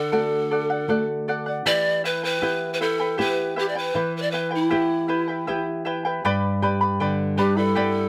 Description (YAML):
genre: andean folk, Andean ensemble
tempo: 79 BPM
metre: 3/4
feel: straight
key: E minor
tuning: A4 = 444 Hz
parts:
  - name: breathy mellow pan flute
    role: melody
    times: 0.0-8.1 s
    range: E4 to D5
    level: -26 LUFS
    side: equal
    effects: none
  - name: charango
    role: accompaniment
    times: 0.0-8.1 s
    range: E4 to B5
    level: -28 LUFS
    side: equal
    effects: none
  - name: nylon-string guitar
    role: accompaniment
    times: 0.0-8.1 s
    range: G2 to G4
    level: -29 LUFS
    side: equal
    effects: none
  - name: large quena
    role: second line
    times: 7.4-8.1 s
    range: D4 to E4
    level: -31 LUFS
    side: equal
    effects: none
room: light reverb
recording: close, detailed microphones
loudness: -23 LUFS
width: mono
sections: 0.0-6.2 A section; 6.2-8.1 B section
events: none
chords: 0.0 D; 1.7 Em; 6.2 G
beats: 0.13 0.89 | 1.66 2.42 3.18 | 3.95 4.71 5.47 | 6.23 6.99 7.75